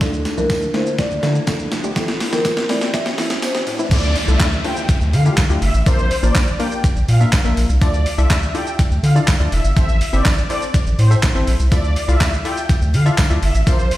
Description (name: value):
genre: dance-pop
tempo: 123 BPM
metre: 4/4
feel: straight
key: D minor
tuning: A4 = 440 Hz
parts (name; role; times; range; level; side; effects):
- marimba with soft mallets; melody; 0.0-3.7 s; A4 to E5; -23 LUFS; equal; tape echo
- wavetable chord stab; accompaniment; 0.0-13.9 s; E3 to F5; -25 LUFS; left 2 dB; sidechain pumping
- glassy FM pad; sustained chords; 0.0-3.9 s; D3 to E4; -30 LUFS; equal; ensemble chorus, built-in reverb, sidechain pumping
- round analog bass; bass; 0.0-13.9 s; F1 to D3; -16 LUFS; equal; sidechain pumping
- crisp 8-bit digital drum machine; drums; 0.0-14.0 s; crash cymbal, handclaps, hi-hat, kick drum, shaker, snare drum; -19 LUFS; equal; overdrive
- tambourine; percussion; 0.0-14.0 s; none; -37 LUFS; right 5 dB; none
- riser and downlifter; sound effects; 0.2-7.8 s; none; -29 LUFS; equal; none
- filtered supersaw swell; melody; 3.9-13.9 s; C5 to G5; -25 LUFS; equal; phaser, sidechain pumping, tape echo
room: light reverb, digital ambience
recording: played on a big sound system in a bare room, stone room reverb, high-pass filter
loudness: -14 LUFS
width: side -15 dB against mid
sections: 0.0-3.9 A section; 3.9-14.0 B section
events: build-up 0.0-3.9; drum fill 0.0-3.9; riser 0.2-3.9; filter sweep 0.0-3.9; drop 3.9-14.0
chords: 0.0 Dmadd9; 2.0 Am; 3.9 Dmadd9; 5.9 Bb; 7.8 Dmadd9; 9.8 Am; 11.7 Dmadd9